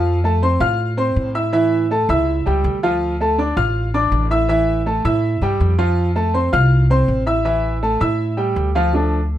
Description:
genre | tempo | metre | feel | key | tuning
latin, salsa | 162 BPM | 4/4 | straight | unclear | A4 = 440 Hz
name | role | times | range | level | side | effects
clear baby grand piano | accompaniment | 0.0-9.2 s | E3 to F6 | -18 LUFS | equal | none
upright bass | bass | 0.0-9.4 s | A1 to A2 | -19 LUFS | equal | none
room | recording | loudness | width
light reverb | close, detailed microphones | -15 LUFS | side -12 dB against mid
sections
0.0-8.9 A section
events
none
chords
0.1 F; 1.5 A7; 3.0 Dm; 4.5 A5; 6.0 F; 7.5 A5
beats
| 0.06 0.43 0.80 1.17 | 1.54 1.91 2.28 2.65 | 3.02 3.39 3.76 4.13 | 4.50 4.87 5.24 5.61 | 5.98 6.35 6.72 7.09 | 7.46 7.83 8.20 8.57 | 8.94 9.31

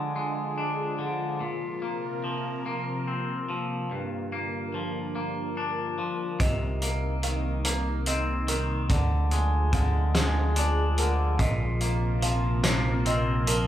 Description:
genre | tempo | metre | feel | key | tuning
post-rock | 48 BPM (dotted quarters) | 6/8 | straight | unclear | A4 = 441 Hz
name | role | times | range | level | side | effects
phased analog pad | sustained chords | 0.0-13.7 s | C3 to Bb4 | -33 LUFS | left 1 dB | phaser, chorus
twangy electric guitar | arpeggios | 0.0-13.7 s | G2 to D4 | -30 LUFS | left 1 dB | spring reverb
felt-muted upright piano | arpeggios | 6.4-13.7 s | Bb4 to F5 | -36 LUFS | right 3 dB | none
overdriven picked electric bass | bass | 6.4-13.7 s | Bb1 to D2 | -26 LUFS | equal | none
loose indie drum kit | drums | 6.4-13.7 s | hi-hat, kick drum, snare drum | -28 LUFS | equal | none
room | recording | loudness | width
moderate large studio reverb, RT60 1.1 s | band playing live in one room | -25 LUFS | side -12 dB against mid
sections
0.0-13.7 A section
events
none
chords
0.0 Ddim; 1.4 Bbsus2; 3.9 Gm7; 6.4 Cm7; 8.9 Ddim; 11.4 Bbsus2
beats
0.15 | 1.40 2.65 | 3.90 5.15 | 6.40 7.65 | 8.90 10.15 | 11.40 12.64

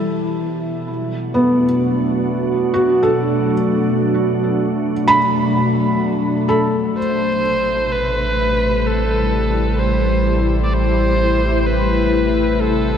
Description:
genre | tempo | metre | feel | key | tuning
ambient | 64 BPM | 4/4 | straight | A dorian | A4 = 440 Hz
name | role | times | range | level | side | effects
glassy FM pad | sustained chords | 0.0-13.0 s | B2 to G4 | -18 LUFS | left 1 dB | ensemble chorus, built-in reverb
felt-muted upright piano | arpeggios | 0.0-7.4 s | B3 to B5 | -19 LUFS | right 1 dB | tape echo
dark electric violin | melody | 7.0-13.0 s | A4 to D5 | -19 LUFS | right 1 dB | tape echo
warm sub bass | bass | 7.0-13.0 s | A1 | -20 LUFS | right 1 dB | none
room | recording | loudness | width
wet huge ambient reverb, RT60 8.4 s | none | -15 LUFS | side -8 dB against mid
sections
0.0-7.0 A section; 7.0-13.0 B section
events
none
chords
0.0 Bm7; 7.0 Am7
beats
0.41 1.35 2.29 | 3.22 4.16 5.10 6.04 | 6.97 7.91 8.85 9.79 | 10.72 11.66 12.60

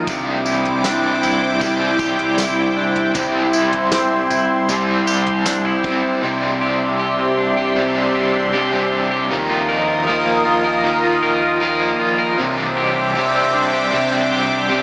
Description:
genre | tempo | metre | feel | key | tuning
dream pop | 78 BPM | 4/4 | straight | unclear | A4 = 440 Hz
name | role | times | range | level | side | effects
overdriven semi-hollow guitar | accompaniment | 0.0-14.8 s | C3 to Bb4 | -24 LUFS | equal | tremolo, lush chorus
phased analog pad | sustained chords | 0.0-14.8 s | E4 to Eb6 | -22 LUFS | equal | phaser, chorus
electric guitar at the edge of break-up | arpeggios | 0.0-14.8 s | C3 to Bb4 | -22 LUFS | equal | lush chorus, digital delay
warm sub bass | bass | 0.0-14.8 s | Bb1 to Eb2 | -41 LUFS | equal | none
soft brush drum kit | drums | 0.1-6.0 s | kick drum, snare drum, tambourine, toms | -28 LUFS | equal | none
room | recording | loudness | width
wet shimmer reverb, RT60 5.8 s | small speaker sound | -18 LUFS | mono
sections
0.0-6.2 A section; 6.2-14.8 B section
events
none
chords
0.1 Cadd9; 3.1 C; 6.2 Cadd9; 9.3 Ebsus2; 12.4 Cadd9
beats
| 0.07 0.84 1.61 2.38 | 3.15 3.92 4.69 5.46 | 6.23 7.00 7.76 8.53 | 9.30 10.07 10.84 11.61 | 12.38 13.15 13.92 14.69

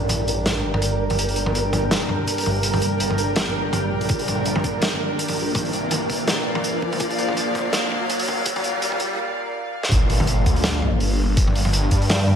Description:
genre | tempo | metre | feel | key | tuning
half-time drum and bass | 165 BPM | 4/4 | swing 55% on 16ths, half-time | G minor | A4 = 440 Hz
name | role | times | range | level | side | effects
bowed-like drone | sustained chords | 0.0-12.4 s | Bb2 to G5 | -26 LUFS | equal | built-in reverb, sidechain pumping
phased detuned saw bass | bass | 0.0-12.4 s | G1 to G2 | -25 LUFS | equal | phaser
riser and impact | sound effects | 0.9-11.4 s | none | -30 LUFS | equal | none
flickering grainy texture | texture | 0.0-9.2 s | Bb4 | -30 LUFS | right 4 dB | built-in reverb
crunchy breakbeat drum kit | drums | 0.1-12.4 s | hi-hat, snare drum, toms | -23 LUFS | equal | none
electronic kick drum | drums | 4.1-12.0 s | none | -21 LUFS | equal | overdrive
room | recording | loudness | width
light reverb, small room reverb | high-pass filter, lossy compression artefacts | -19 LUFS | side -8 dB against mid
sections
0.0-9.9 A section; 9.9-12.4 B section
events
build-up 0.0-9.9; filter sweep 0.0-9.9; riser 0.9-9.2; break 9.2-9.9; drum fill 9.6-9.9; drop 9.9-12.4; impact 9.9-11.4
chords
0.0 Gm; 4.1 Bb; 9.9 Gm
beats
0.10 0.46 0.83 | 1.19 1.55 1.92 2.28 | 2.64 3.01 3.37 3.73 | 4.10 4.46 4.83 5.19 | 5.55 5.92 6.28 6.64 | 7.01 7.37 7.74 8.10 | 8.46 8.83 9.19 9.55 | 9.92 10.28 10.64 11.01 | 11.37 11.73 12.10

